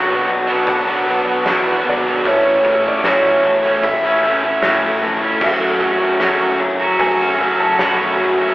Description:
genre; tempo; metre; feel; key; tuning
post-rock; 76 BPM; 4/4; straight; B minor; A4 = 440 Hz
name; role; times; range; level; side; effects
electric slide guitar; melody; 0.0-8.5 s; C#5 to B5; -19 LUFS; equal; none
glassy FM pad; sustained chords; 0.0-8.5 s; A4 to C#6; -28 LUFS; equal; none
twangy electric guitar; arpeggios; 0.0-8.5 s; B2 to F#4; -22 LUFS; equal; none
cranked stack guitar; riff; 0.0-8.5 s; A2 to F#4; -18 LUFS; right 1 dB; overdrive
fuzz guitar; riff; 0.0-8.5 s; A2 to F#4; -20 LUFS; left 1 dB; distortion
fuzz fingered electric bass; bass; 0.0-8.5 s; E#1 to A2; -28 LUFS; equal; overdrive
oversized low-tuned drum kit; drums; 0.5-8.0 s; crash cymbal, hi-hat, kick drum, snare drum; -23 LUFS; equal; none
room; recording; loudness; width
wet large studio reverb, RT60 1.3 s; band playing live in one room, telephone sound; -13 LUFS; side -17 dB against mid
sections
0.0-8.5 A section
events
none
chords
0.0 Bmadd9; 2.3 A6; 5.4 F#m

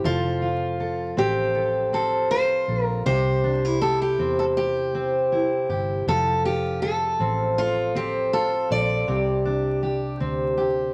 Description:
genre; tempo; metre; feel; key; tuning
acoustic pop; 80 BPM; 4/4; swing 55% on 16ths; F major; A4 = 441 Hz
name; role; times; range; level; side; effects
fingerpicked steel-string acoustic guitar; accompaniment; 0.0-10.9 s; C3 to A4; -26 LUFS; equal; none
vintage muted fingered electric bass; bass; 0.0-10.9 s; F1 to E2; -32 LUFS; equal; none
picked steel-string acoustic guitar; melody; 0.1-10.9 s; F4 to D5; -28 LUFS; equal; none
room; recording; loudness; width
moderate studio reverb, RT60 0.8 s; vinyl crackle; -23 LUFS; mono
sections
0.0-10.9 A section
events
none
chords
0.0 F; 3.1 C; 6.1 F; 9.1 Csus2

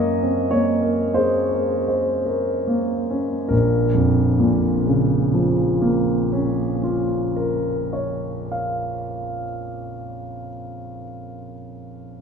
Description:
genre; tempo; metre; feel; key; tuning
classical, impressionist solo piano; 23-34 BPM (dotted quarters); 9/8; rubato; Bb minor; A4 = 440 Hz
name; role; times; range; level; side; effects
warm grand piano; solo; 0.0-12.2 s; Bb1 to F5; -19 LUFS; equal; none
room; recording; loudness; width
wet cathedral reverb, RT60 6.2 s; recorded in a church or concert hall; -18 LUFS; side -6 dB against mid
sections
0.0-3.5 A section; 3.5-10.1 B section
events
slowing down 0.0-3.5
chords
0.0 Gb; 3.5 Bbm

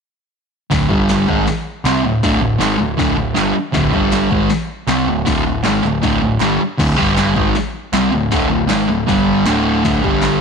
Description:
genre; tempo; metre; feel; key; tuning
garage rock duo or trio; 158 BPM; 4/4; straight; unclear; A4 = 440 Hz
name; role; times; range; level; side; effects
fuzz guitar; riff; 0.7-10.4 s; D2 to C4; -14 LUFS; equal; distortion
growling picked electric bass; bass; 0.7-10.4 s; D1 to C2; -24 LUFS; equal; overdrive
punchy analog drum machine; drums; 0.7-10.3 s; crash cymbal, hi-hat, kick drum, snare drum; -22 LUFS; left 2 dB; none
group handclap; percussion; 1.1-10.3 s; none; -28 LUFS; right 11 dB; none
room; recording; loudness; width
light reverb, digital ambience; 1960s-style stereo; -13 LUFS; side -6 dB against mid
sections
0.7-10.4 A section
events
none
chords
0.7 D5; 0.9 G5; 1.3 D5; 3.9 G5; 4.3 D5; 7.0 G5; 7.4 D5; 9.1 G5; 9.5 D5; 10.0 G5

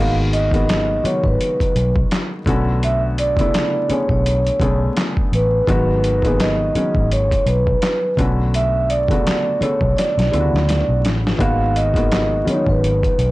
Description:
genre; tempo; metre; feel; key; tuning
R&B, neo-soul; 84 BPM; 4/4; swing 58% on 16ths; unclear; A4 = 441 Hz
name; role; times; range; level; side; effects
vibraphone with soft mallets; melody; 0.0-13.3 s; B4 to E#5; -20 LUFS; right 2 dB; slapback echo, plate reverb
warm baby grand piano; accompaniment; 0.0-13.3 s; C#3 to A4; -22 LUFS; left 2 dB; none
vintage muted fingered electric bass; bass; 0.0-13.3 s; G#1 to D2; -19 LUFS; equal; transformer saturation
boom bap sampler-style drum kit; drums; 0.3-13.3 s; handclaps, hi-hat, kick drum, snare drum; -21 LUFS; equal; none
room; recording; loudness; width
moderate studio reverb, RT60 0.6 s; blown-out, overdriven recording, vinyl crackle, overdrive; -15 LUFS; side -18 dB against mid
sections
0.0-13.3 A section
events
drum fill 10.0-11.4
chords
0.0 G#m9; 2.5 Bm9; 5.7 G#m9; 8.2 Bm9; 11.4 G#m9

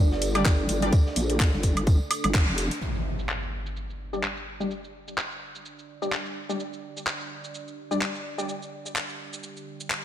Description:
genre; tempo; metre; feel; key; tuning
bass house; 127 BPM; 4/4; swing 57% on 16ths; unclear; A4 = 440 Hz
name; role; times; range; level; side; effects
dark analog pad; sustained chords; 0.0-10.0 s; D4 to D5; -36 LUFS; right 2 dB; chorus, phaser, sidechain pumping
vowel-sweep wobble bass; bass; 0.0-2.7 s; F1 to Bb1; -27 LUFS; equal; chorus, overdrive, sidechain pumping
raw garage drum kit; drums; 0.1-2.8 s; hi-hat, snare drum, tambourine; -40 LUFS; equal; sidechain pumping on hats, high-pass filter on hats, small room ambience, high-pass filter on snare, sidechain pumping on perc, high-pass filter on perc, high-pass filter on room
garage drum kit; drums; 0.2-10.0 s; handclaps, hi-hat, shaker, woodblock; -30 LUFS; equal; low-pass filter on hats, small room ambience, low-pass filter on snare, low-pass filter on perc
orchestra-hit-like synth stab; stabs; 0.4-0.9, 4.1-8.5 s; G3 to D5; -32 LUFS; left 2 dB; built-in reverb, sidechain pumping, digital delay
electronic kick drum; drums; 0.5-2.5 s; none; -21 LUFS; equal; small room ambience
impact; sound effects; 2.8-4.7 s; none; -33 LUFS; equal; none
room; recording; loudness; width
light reverb, small room reverb; none; -24 LUFS; side -11 dB against mid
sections
0.0-2.8 A section; 2.8-10.0 B section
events
band accent 2.3; impact 2.8-4.7; filter sweep on synth stab 2.8-10.0; filter sweep on analog synth pad 2.8-10.0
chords
0.0 G5

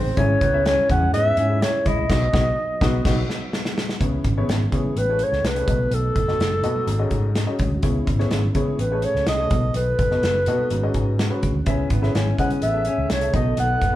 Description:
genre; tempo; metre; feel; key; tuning
uptempo 1960s-style soul; 125 BPM; 4/4; straight; C# minor from 4.0 s; A4 = 442 Hz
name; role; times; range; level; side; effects
breathy clarinet; melody; 0.0-14.0 s; G#4 to F#5; -23 LUFS; equal; none
warm upright piano; accompaniment; 0.0-14.0 s; G#2 to G#5; -28 LUFS; left 2 dB; none
percussive tonewheel organ; sustained chords; 0.0-14.0 s; E3 to A4; -32 LUFS; right 2 dB; slow rotary speaker, chorus vibrato
electric guitar through a small old amp; riff; 0.0-2.1, 11.7-14.0 s; B3 to E4; -28 LUFS; left 5 dB; none
fingered electric bass; bass; 0.0-14.0 s; F#1 to C#3; -24 LUFS; equal; none
congas; percussion; 0.1-13.9 s; none; -36 LUFS; right 2 dB; none
natural country drum kit; drums; 0.2-13.9 s; crash cymbal, hi-hat, kick drum, snare drum; -24 LUFS; equal; none
room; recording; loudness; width
moderate large studio reverb, RT60 1.3 s; band playing live in one room; -18 LUFS; side -14 dB against mid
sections
0.0-4.0 A section; 4.0-14.0 B section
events
band accent 2.1-4.0; drum fill 3.0-4.0; upright piano fill 10.7-11.7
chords
0.2 C#m/G#; 2.1 B; 4.0 C#m7; 5.0 Amaj7; 5.7 B7; 6.9 G#7sus4; 7.8 C#m7; 8.8 Amaj7; 9.5 B7; 10.7 G#7sus4; 11.7 C#m7; 12.6 Amaj7; 13.3 B7

